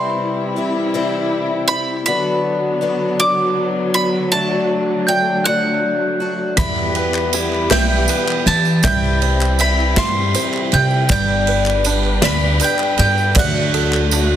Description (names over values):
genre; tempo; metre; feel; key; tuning
indie folk with a building arrangement; 53 BPM (dotted quarters); 6/8; straight; unclear; A4 = 441 Hz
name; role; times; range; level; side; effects
bowl-back mandolin; melody; 0.0-14.4 s; F#5 to D6; -21 LUFS; right 2 dB; none
picked twelve-string acoustic guitar; accompaniment; 0.0-14.4 s; E2 to G4; -21 LUFS; left 4 dB; none
warm studio string section; sustained chords; 0.0-14.4 s; C3 to B4; -23 LUFS; equal; none
glockenspiel with soft plastic mallets; second line; 5.1-14.4 s; F#6 to C7; -24 LUFS; right 1 dB; none
felt-muted upright piano; accompaniment; 6.6-14.4 s; G1 to G5; -29 LUFS; equal; none
open-back banjo; arpeggios; 6.6-14.4 s; D4 to E5; -27 LUFS; right 5 dB; analog delay
upright bass; bass; 6.6-14.4 s; G1 to E3; -18 LUFS; equal; none
unplugged drum kit; drums; 6.6-14.3 s; kick drum, ride cymbal, snare drum; -20 LUFS; right 2 dB; none
group handclap; percussion; 6.6-14.1 s; none; -26 LUFS; left 3 dB; none
tambourine; percussion; 6.6-14.3 s; none; -27 LUFS; right 7 dB; none
room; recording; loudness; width
light reverb, small room reverb; dense, heavily limited modern master; -14 LUFS; side -10 dB against mid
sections
0.0-14.4 A section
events
none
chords
0.0 C; 2.1 Bm/D; 4.3 D; 6.6 Em; 8.8 C; 11.1 G; 13.4 D